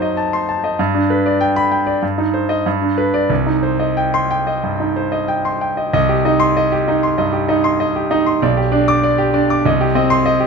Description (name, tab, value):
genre	classical, virtuoso piano study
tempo	88-100 BPM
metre	4/4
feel	rubato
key	C minor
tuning	A4 = 440 Hz
part	clear concert grand piano	solo	0.0-10.5 s	B1 to D6	-14 LUFS	right 1 dB	none
room	light reverb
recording	minimal, uncompressed stereo recording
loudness	-14 LUFS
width	side -5 dB against mid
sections	0.0-5.9 A section; 5.9-10.5 B section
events	none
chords	0.0 F#dim7; 0.8 G; 2.0 Cm/G; 2.7 G; 3.3 Cm; 8.4 G/B; 9.6 Cm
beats	0.17 | 0.78 1.40 2.02 2.66 | 3.30 3.97 4.63 5.28 | 5.93 6.55 7.17 7.79 | 8.41 9.03 9.65 10.26